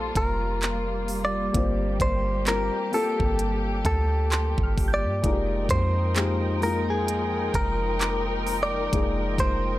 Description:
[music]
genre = contemporary R&B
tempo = 65 BPM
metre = 4/4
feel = swing 58% on 16ths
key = G phrygian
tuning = A4 = 440 Hz
[part]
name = direct-recorded clean electric guitar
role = melody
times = 0.0-9.8 s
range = Ab4 to D5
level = -28 LUFS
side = equal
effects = none
[part]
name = felt-muted upright piano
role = accompaniment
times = 0.0-9.8 s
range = Ab3 to C5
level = -31 LUFS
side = left 4 dB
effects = none
[part]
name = muted studio string section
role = sustained chords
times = 0.0-9.8 s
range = F3 to G5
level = -31 LUFS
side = left 1 dB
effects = none
[part]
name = soft 808-style bass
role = bass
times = 0.0-9.8 s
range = F1 to G2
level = -27 LUFS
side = equal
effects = none
[part]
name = soft round pluck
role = texture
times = 0.0-9.8 s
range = D5 to G6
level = -38 LUFS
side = right 3 dB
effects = chorus, analog delay
[part]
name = trap drum kit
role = drums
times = 0.2-9.6 s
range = handclaps, hi-hat, kick drum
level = -27 LUFS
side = equal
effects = none
[sound]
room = little or no reverb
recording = dry, gritty hardware recording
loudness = -22 LUFS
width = side -15 dB against mid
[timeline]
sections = 0.0-9.8 A section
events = none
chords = 0.0 Gm11; 5.2 Fm11

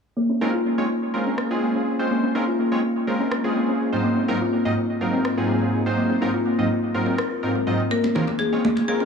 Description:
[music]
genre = afro house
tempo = 124 BPM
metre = 4/4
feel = straight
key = Bb minor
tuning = A4 = 440 Hz
[part]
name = kalimba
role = arpeggios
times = 0.2-9.1 s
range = Ab3 to Bb4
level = -22 LUFS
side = left 1 dB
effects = low-pass filter, dub echo
[part]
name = warm analog keys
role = stabs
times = 0.4-9.1 s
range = Ab2 to Eb5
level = -24 LUFS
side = right 1 dB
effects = chorus, vintage 12-bit sampler grit, analog delay
[part]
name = electronic rim click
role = drums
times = 1.4-7.3 s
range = none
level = -32 LUFS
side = equal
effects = low-pass filter on snare, small room ambience
[part]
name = marimba with medium hard mallets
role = melody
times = 7.9-9.1 s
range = Ab4 to Bb4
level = -25 LUFS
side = left 7 dB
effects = dub echo
[part]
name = congas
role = percussion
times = 8.0-8.9 s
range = none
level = -24 LUFS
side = right 2 dB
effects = analog delay
[sound]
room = moderate plate reverb, RT60 2.0 s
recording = echo-heavy mix, small room reverb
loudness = -20 LUFS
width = side -6 dB against mid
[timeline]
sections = 0.2-9.1 A section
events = filter sweep on kalimba 0.2-9.1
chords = 0.2 Bbm7; 4.0 Ab13; 7.9 Ab69

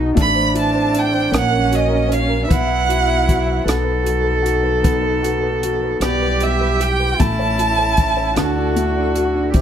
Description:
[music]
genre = acoustic folk-pop ballad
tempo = 51 BPM (dotted quarters)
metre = 6/8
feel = straight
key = unclear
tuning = A4 = 441 Hz
[part]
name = warm cello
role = second line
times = 0.0-9.6 s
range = C#4 to A4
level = -21 LUFS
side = right 2 dB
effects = none
[part]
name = felt-muted upright piano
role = accompaniment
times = 0.0-9.6 s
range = B2 to E5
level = -23 LUFS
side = left 3 dB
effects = none
[part]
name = muted studio string section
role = sustained chords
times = 0.0-9.6 s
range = D3 to A4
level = -28 LUFS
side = equal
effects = none
[part]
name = upright bass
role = bass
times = 0.0-9.6 s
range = A1 to D2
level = -22 LUFS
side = equal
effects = none
[part]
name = rich violin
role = melody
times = 0.2-8.8 s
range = D5 to B5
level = -20 LUFS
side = right 3 dB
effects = none
[part]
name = compact cocktail drum kit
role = drums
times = 0.2-9.6 s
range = hi-hat, kick drum, rim click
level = -19 LUFS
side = equal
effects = none
[sound]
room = moderate studio reverb, RT60 0.8 s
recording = none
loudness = -15 LUFS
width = side -9 dB against mid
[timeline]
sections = 0.0-9.6 A section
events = none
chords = 0.2 Am; 1.3 F#/A#; 2.5 Bsus4; 3.7 B; 6.0 Em/B; 7.2 A; 8.4 Dadd9

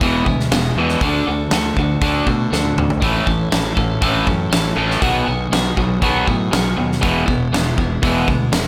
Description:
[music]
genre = quiet-loud alternative rock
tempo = 120 BPM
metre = 4/4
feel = straight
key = E mixolydian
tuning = A4 = 439 Hz
[part]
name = clean electric guitar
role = arpeggios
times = 0.0-8.7 s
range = A2 to A4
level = -25 LUFS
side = equal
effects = analog delay
[part]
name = cranked stack guitar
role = riff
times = 0.0-8.7 s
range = E2 to D4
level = -21 LUFS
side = equal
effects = overdrive
[part]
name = fuzz fingered electric bass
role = bass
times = 0.0-8.7 s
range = E1 to B2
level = -26 LUFS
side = equal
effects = overdrive
[part]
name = huge arena drum kit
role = drums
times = 0.0-8.6 s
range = hi-hat, kick drum, snare drum, toms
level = -23 LUFS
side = equal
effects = none
[sound]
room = light reverb, small room ambience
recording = none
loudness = -17 LUFS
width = mono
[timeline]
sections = 0.0-8.7 A section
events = drum fill 2.5-3.0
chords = 0.0 E; 1.0 D; 3.0 A; 5.0 B6; 7.0 E

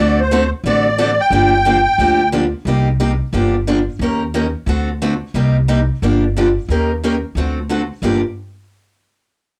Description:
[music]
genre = acoustic string swing (jazz manouche)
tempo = 179 BPM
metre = 4/4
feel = swing 62% on 8ths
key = G minor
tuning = A4 = 440 Hz
[part]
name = musette accordion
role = melody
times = 0.0-2.3 s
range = C5 to G5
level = -17 LUFS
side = equal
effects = cassette tape
[part]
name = picked acoustic archtop guitar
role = accompaniment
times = 0.0-8.2 s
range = G2 to Bb4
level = -20 LUFS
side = equal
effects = cassette tape
[part]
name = upright bass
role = bass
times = 0.0-8.2 s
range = G1 to Eb2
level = -21 LUFS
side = equal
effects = tube saturation
[sound]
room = moderate small room reverb, RT60 0.5 s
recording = home recording on cassette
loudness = -16 LUFS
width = mono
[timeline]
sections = 0.0-2.7 A section; 2.7-8.0 B section; 8.0-9.4 C section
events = none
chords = 0.0 D7; 1.3 Gm7; 2.7 Cm7; 3.3 Gm7; 4.0 Eb7; 4.7 D7; 5.3 Cm7; 6.0 Gm7; 6.7 Eb7; 7.4 D7; 8.0 Gm7

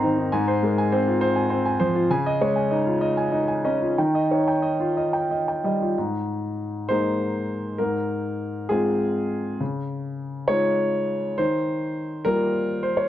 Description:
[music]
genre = neoclassical minimalist piano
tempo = 60-70 BPM (dotted quarters)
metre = 6/8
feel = rubato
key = Ab major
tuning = A4 = 441 Hz
[part]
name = warm grand piano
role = solo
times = 0.0-13.1 s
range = Ab2 to Bb5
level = -21 LUFS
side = equal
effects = none
[sound]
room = light reverb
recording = worn, warbling old tape, cassette tape, warbly pitch drift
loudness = -21 LUFS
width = side -12 dB against mid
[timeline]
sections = 0.0-5.9 A section; 5.9-13.1 B section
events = none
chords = 0.3 Fm/Ab; 2.1 Dbadd9; 4.0 Ebadd9; 5.9 Abadd9; 7.8 Fm/Ab; 9.6 Dbadd9; 11.4 Ebadd9

